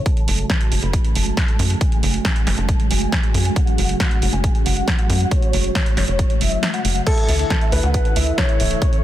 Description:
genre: uplifting trance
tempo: 137 BPM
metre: 4/4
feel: straight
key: unclear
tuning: A4 = 436 Hz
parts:
  - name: dense compressed supersaw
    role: melody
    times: 0.0-9.0 s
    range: C#5 to B5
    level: -28 LUFS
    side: equal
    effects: cassette tape, sidechain pumping, low-pass filter, digital delay
  - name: lush unison pad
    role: sustained chords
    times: 0.0-9.0 s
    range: C#3 to A4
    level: -26 LUFS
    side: right 1 dB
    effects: chorus, phaser, sidechain pumping
  - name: electronic kick drum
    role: drums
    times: 0.1-8.9 s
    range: none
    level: -19 LUFS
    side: equal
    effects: none
  - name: punchy analog drum machine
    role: drums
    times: 0.1-9.0 s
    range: crash cymbal, hi-hat, snare drum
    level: -24 LUFS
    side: right 1 dB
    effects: none
  - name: tight sequencer bass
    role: bass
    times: 0.3-8.8 s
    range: D1 to F#2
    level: -20 LUFS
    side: equal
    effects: sidechain pumping
  - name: dark grand piano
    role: second line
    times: 7.1-9.0 s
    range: A4 to C#5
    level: -24 LUFS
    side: left 1 dB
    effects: ping-pong delay
room: little or no reverb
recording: dense, heavily limited modern master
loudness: -16 LUFS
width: side -13 dB against mid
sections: 0.0-9.0 A section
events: filter sweep on analog synth pad 0.0-9.0; kick drops out 6.6-7.1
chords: 0.1 F#madd9; 7.1 Dsus2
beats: | 0.06 0.50 0.94 1.37 | 1.81 2.25 2.69 3.12 | 3.56 4.00 4.44 4.88 | 5.32 5.75 6.19 6.63 | 7.07 7.50 7.94 8.38 | 8.82

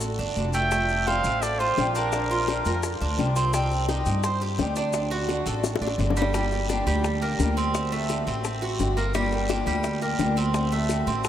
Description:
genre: latin, Cuban son and guajira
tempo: 171 BPM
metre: 4/4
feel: straight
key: G minor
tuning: A4 = 440 Hz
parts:
  - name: picked old ladder-braced acoustic guitar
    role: accompaniment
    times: 0.0-11.3 s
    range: C3 to G4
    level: -31 LUFS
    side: left 3 dB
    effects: none
  - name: Cuban tres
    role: arpeggios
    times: 0.0-11.3 s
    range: G3 to C5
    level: -28 LUFS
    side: right 3 dB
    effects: none
  - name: upright bass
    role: bass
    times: 0.0-11.3 s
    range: F1 to G2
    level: -27 LUFS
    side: equal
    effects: none
  - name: guiro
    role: percussion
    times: 0.0-11.3 s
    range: none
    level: -39 LUFS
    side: right 4 dB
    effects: none
  - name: maracas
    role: percussion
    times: 0.0-11.3 s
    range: none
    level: -40 LUFS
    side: left 4 dB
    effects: none
  - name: breathy trumpet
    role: melody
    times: 0.5-3.0 s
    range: Bb4 to G5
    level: -29 LUFS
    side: right 1 dB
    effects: none
  - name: bongos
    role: percussion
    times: 0.7-11.3 s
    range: none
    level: -32 LUFS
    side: left 6 dB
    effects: none
room: wet cathedral reverb, RT60 6.6 s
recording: in a vast, echoing space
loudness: -22 LUFS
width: side -10 dB against mid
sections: 0.0-6.3 A section; 6.3-11.3 B section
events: drum fill 5.6-6.3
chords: 0.0 D; 0.7 Fadd9; 2.1 Bb6; 3.5 Cm; 4.9 D; 6.3 Gm7; 7.7 D7; 9.1 Gm7; 10.5 D7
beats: 0.01 0.37 | 0.72 1.07 1.42 1.78 | 2.13 2.48 2.83 3.19 | 3.54 3.89 4.24 4.59 | 4.94 5.29 5.64 5.99 | 6.34 6.69 7.04 7.39 | 7.74 8.09 8.44 8.79 | 9.14 9.49 9.85 10.20 | 10.55 10.90 11.25

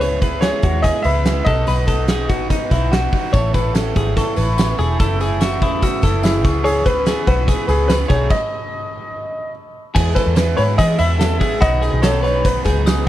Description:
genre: jangly indie pop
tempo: 145 BPM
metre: 4/4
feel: straight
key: unclear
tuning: A4 = 445 Hz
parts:
  - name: clear upright piano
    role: melody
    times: 0.0-2.2, 6.2-13.0 s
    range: E4 to E5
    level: -21 LUFS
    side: left 1 dB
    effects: none
  - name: raw garage guitar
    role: accompaniment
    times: 0.0-13.1 s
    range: F#2 to C#5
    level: -25 LUFS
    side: right 9 dB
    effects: overdrive
  - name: twelve-string electric guitar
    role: arpeggios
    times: 0.0-13.0 s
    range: D#4 to C#5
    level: -23 LUFS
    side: left 4 dB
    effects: none
  - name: vintage muted picked electric bass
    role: bass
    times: 0.0-13.1 s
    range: E1 to E3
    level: -19 LUFS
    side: equal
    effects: none
  - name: big rock drum kit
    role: drums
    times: 0.0-13.0 s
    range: crash cymbal, hi-hat, kick drum, snare drum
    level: -20 LUFS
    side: equal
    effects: none
  - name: glockenspiel with soft plastic mallets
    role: second line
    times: 3.3-13.1 s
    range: G#5 to E6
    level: -30 LUFS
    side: left 4 dB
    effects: none
  - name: tambourine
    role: percussion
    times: 3.3-13.0 s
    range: none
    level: -39 LUFS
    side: left 21 dB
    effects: none
room: little or no reverb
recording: none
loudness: -14 LUFS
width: side -13 dB against mid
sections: 0.0-10.0 A section; 10.0-13.1 B section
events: stop 8.3-10.0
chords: 0.0 C#m7; 1.5 B; 3.3 Aadd9; 5.0 F#m7; 6.4 C#m7; 8.1 B7; 10.0 E; 11.6 B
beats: | 0.01 0.43 0.84 1.26 | 1.68 2.09 2.51 2.92 | 3.34 3.75 4.17 4.58 | 5.00 5.41 5.82 6.24 | 6.65 7.07 7.48 7.89 | 8.31 8.72 9.13 9.55 | 9.96 10.38 10.79 11.20 | 11.62 12.03 12.44 12.86

